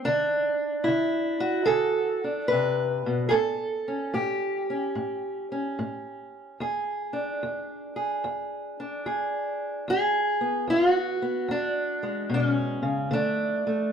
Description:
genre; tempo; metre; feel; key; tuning
blues; 74 BPM; 4/4; swing 66% on 8ths; unclear; A4 = 440 Hz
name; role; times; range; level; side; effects
fingerpicked steel-string acoustic guitar; solo; 0.0-13.9 s; E2 to B4; -24 LUFS; equal; none
room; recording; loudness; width
moderate stone room reverb, RT60 1.1 s; band playing live in one room; -24 LUFS; side -7 dB against mid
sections
0.0-13.9 A section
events
none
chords
0.0 D7; 3.3 A7; 6.6 E7; 13.1 D5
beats
| 0.08 0.90 1.71 2.52 | 3.34 4.15 4.97 5.78 | 6.60 7.41 8.23 9.05 | 9.86 10.68 11.50 12.31 | 13.13

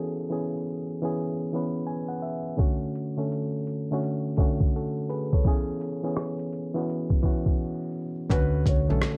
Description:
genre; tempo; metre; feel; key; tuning
lo-fi hip hop; 84 BPM; 4/4; swing 63% on 16ths; C# phrygian; A4 = 440 Hz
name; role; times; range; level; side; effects
overdriven reed electric piano; accompaniment; 0.0-9.2 s; D3 to G#5; -31 LUFS; equal; cassette tape, low-pass filter, plate reverb
boom bap sampler-style drum kit; drums; 2.6-9.2 s; hi-hat, kick drum, rim click; -26 LUFS; equal; vintage 12-bit sampler grit
felt-muted upright piano; melody; 8.3-9.0 s; B4 to C#5; -34 LUFS; equal; low-pass filter, plate reverb
upright bass; bass; 8.3-9.0 s; B1 to D2; -28 LUFS; equal; none
room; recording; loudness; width
moderate small room reverb, RT60 0.5 s; vinyl crackle, low-pass filter; -28 LUFS; mono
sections
0.0-8.3 A section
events
filter sweep 0.0-8.3; break 7.6-8.3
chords
0.0 C#m7; 2.6 Dmaj7; 5.5 C#m7; 8.3 Dmaj7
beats
0.45 1.16 1.88 | 2.59 3.31 4.02 4.74 | 5.45 6.16 6.88 7.59 | 8.31 9.02

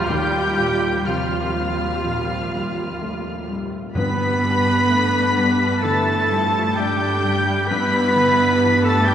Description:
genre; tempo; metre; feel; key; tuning
cinematic, emotional film score for orchestra; 64 BPM; 4/4; rubato; unclear; A4 = 440 Hz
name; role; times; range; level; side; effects
warm symphonic violin section; melody; 0.0-9.1 s; F6 to B6; -26 LUFS; left 2 dB; none
bright small flute group; second line; 0.0-9.1 s; F5 to B5; -26 LUFS; left 1 dB; none
clear oboe; second line; 0.0-9.1 s; F4 to B4; -27 LUFS; equal; none
warm clarinet; second line; 0.0-9.1 s; F4 to B4; -27 LUFS; equal; none
warm studio violin section; second line; 0.0-9.1 s; F5 to B5; -30 LUFS; left 1 dB; none
felt-muted upright piano; accompaniment; 0.0-9.1 s; Eb2 to A3; -27 LUFS; left 2 dB; none
warm symphonic viola section; accompaniment; 0.0-9.1 s; E3 to F4; -28 LUFS; right 2 dB; none
dark French horn section; sustained chords; 0.0-9.1 s; F3 to B3; -26 LUFS; equal; none
rich symphonic double bass section; bass; 0.0-9.1 s; Eb2 to G2; -27 LUFS; right 1 dB; none
warm symphonic cello section; bass; 0.0-9.1 s; F3 to B3; -27 LUFS; right 3 dB; none
timpani; percussion; 3.9-5.3 s; G2; -29 LUFS; right 1 dB; none
room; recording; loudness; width
wet church reverb, RT60 2.9 s; none; -17 LUFS; side -9 dB against mid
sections
0.0-9.1 A section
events
none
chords
0.0 Ebadd9; 4.0 G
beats
| 0.10 1.07 2.04 3.00 | 3.96 4.90 5.83 6.76 | 7.70 8.61

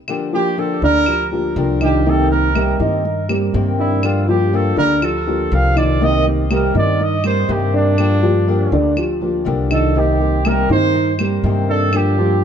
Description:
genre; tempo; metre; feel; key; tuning
latin, Cuban son and guajira; 122 BPM; 4/4; straight; G minor; A4 = 441 Hz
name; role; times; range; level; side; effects
fingerpicked old ladder-braced acoustic guitar; accompaniment; 0.1-12.4 s; C3 to G4; -22 LUFS; left 5 dB; none
claves; percussion; 0.1-12.2 s; none; -28 LUFS; left 1 dB; none
warm trumpet; melody; 0.3-12.4 s; D4 to F5; -22 LUFS; right 4 dB; tape echo
dark concert grand piano; arpeggios; 0.3-12.4 s; D3 to Eb5; -18 LUFS; right 1 dB; none
upright bass; bass; 0.8-12.4 s; C2 to G2; -19 LUFS; equal; none
room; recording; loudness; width
light reverb; dark, warm production; -14 LUFS; side -8 dB against mid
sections
0.1-12.4 A section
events
trumpet solo 0.1-12.4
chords
0.1 Gm7; 2.1 Cm7; 4.0 Gm7; 6.0 Cm7; 8.0 Gm7; 10.0 Cm7; 11.9 Gm7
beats
| 0.09 0.58 1.07 1.57 | 2.06 2.55 3.05 3.54 | 4.04 4.53 5.02 5.52 | 6.01 6.50 7.00 7.49 | 7.98 8.48 8.97 9.46 | 9.96 10.45 10.95 11.44 | 11.93 12.42

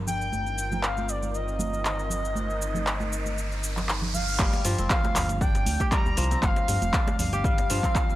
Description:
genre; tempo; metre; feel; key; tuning
afro house; 118 BPM; 4/4; swing 54% on 16ths; unclear; A4 = 440 Hz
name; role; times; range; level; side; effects
warm analog pad; sustained chords; 0.0-4.4 s; Eb3 to Bb4; -38 LUFS; equal; chorus, sidechain pumping
smooth synth bass; bass; 0.0-7.8 s; F1 to G2; -30 LUFS; equal; sidechain pumping
expressive portamento lead; melody; 0.1-8.2 s; D5 to Bb5; -31 LUFS; left 1 dB; lush chorus, vintage 12-bit sampler grit, tape echo
deep house drum kit; drums; 0.1-8.2 s; crash cymbal, handclaps, hi-hat, shaker; -30 LUFS; equal; overdrive, small room ambience
congas; percussion; 0.1-7.3 s; none; -35 LUFS; right 3 dB; none
riser; sound effects; 1.8-4.4 s; none; -36 LUFS; right 3 dB; none
kora; arpeggios; 4.4-8.2 s; F3 to G4; -32 LUFS; equal; sidechain pumping, tape echo
electronic kick drum; drums; 4.4-8.1 s; none; -25 LUFS; equal; overdrive, small room ambience
djembe; percussion; 4.5-8.2 s; none; -36 LUFS; left 1 dB; none
room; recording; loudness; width
digital ambience; dry, gritty hardware recording; -23 LUFS; side -15 dB against mid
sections
0.0-4.4 A section; 4.4-8.2 B section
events
riser 1.8-4.4; drop 4.4-8.2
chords
0.3 F7sus4/G; 4.4 F5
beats
| 0.33 0.84 1.34 1.85 | 2.36 2.87 3.38 3.89 | 4.39 4.90 5.41 5.92 | 6.43 6.94 7.45 7.96

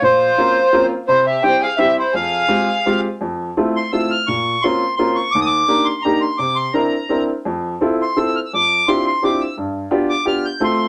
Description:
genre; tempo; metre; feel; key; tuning
musette waltz; 170 BPM; 3/4; rubato; F minor, F major from 3.2 s; A4 = 440 Hz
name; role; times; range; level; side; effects
accordion; melody; 0.0-10.9 s; C5 to G6; -19 LUFS; equal; none
clear violin; second line; 0.0-3.0 s; E4 to C5; -28 LUFS; equal; none
warm upright piano; accompaniment; 0.0-10.9 s; Eb2 to Bb4; -21 LUFS; equal; none
room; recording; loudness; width
moderate small room reverb, RT60 0.5 s; none; -17 LUFS; mono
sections
0.0-3.2 A section; 3.2-10.9 B section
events
none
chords
0.0 Bbmadd9; 1.1 C; 2.1 Fmadd9; 3.2 Fmaj7; 4.3 Bbmadd9; 5.3 Ebmaj7; 6.4 C9; 7.5 Fmaj7; 8.5 Dm11/F; 9.6 G7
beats
| 0.02 0.37 0.72 | 1.07 1.42 1.77 | 2.12 2.48 2.84 | 3.21 3.57 3.93 | 4.28 4.63 4.99 | 5.34 5.69 6.04 | 6.39 6.74 7.10 | 7.46 7.82 8.17 | 8.53 8.88 9.23 | 9.58 9.93 10.28 | 10.63

